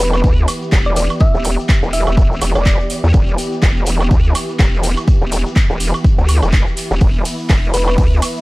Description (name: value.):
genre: bass house.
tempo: 124 BPM.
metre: 4/4.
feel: swing 57% on 16ths.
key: E minor.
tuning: A4 = 439 Hz.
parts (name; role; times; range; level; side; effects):
thumb-piano-like synth pluck; melody; 0.0-2.9, 7.7-7.9 s; B4 to E5; -22 LUFS; equal; chorus, tape echo.
rich symphonic string section; sustained chords; 0.0-8.4 s; E3 to G4; -25 LUFS; equal; sidechain pumping, low-pass filter.
vowel-sweep wobble bass; bass; 0.0-8.2 s; E1 to E2; -16 LUFS; equal; chorus, sidechain pumping.
house drum kit; drums; 0.0-8.3 s; handclaps, hi-hat, ride cymbal, woodblock; -23 LUFS; right 2 dB; small room reverb.
shekere; percussion; 0.1-8.4 s; none; -30 LUFS; left 3 dB; none.
electronic kick drum; drums; 0.2-8.1 s; none; -13 LUFS; equal; small room reverb.
room: digital ambience.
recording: dark, warm production.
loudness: -12 LUFS.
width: side -21 dB against mid.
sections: 0.0-8.4 A section.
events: none.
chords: 0.0 Em.